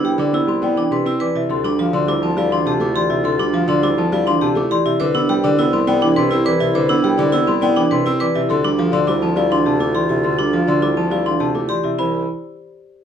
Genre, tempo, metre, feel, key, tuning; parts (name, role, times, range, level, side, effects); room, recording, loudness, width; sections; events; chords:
classical, minimalist pattern music; 103 BPM; 3/4; straight; C major; A4 = 440 Hz
warm clarinet; second line; 0.0-11.8 s; E4 to F4; -27 LUFS; right 2 dB
warm baby grand piano; accompaniment; 0.0-12.3 s; C3 to C4; -22 LUFS; equal
vibraphone with hard mallets; arpeggios; 0.0-12.3 s; C4 to C5; -20 LUFS; right 8 dB
worn celesta; arpeggios; 0.0-12.3 s; E5 to E6; -24 LUFS; left 5 dB
warm bassoon; bass; 0.0-12.3 s; C2 to D2; -25 LUFS; right 1 dB
marimba with medium mallets; melody; 0.1-12.3 s; G4 to G5; -22 LUFS; left 9 dB
light reverb; -15 LUFS; side -8 dB against mid
0.0-12.0 A section; 12.0-13.0 B section
0.0 Cmaj7; 1.5 Dm9; 5.0 Cmaj7; 8.5 Dm9; 12.0 Cmaj7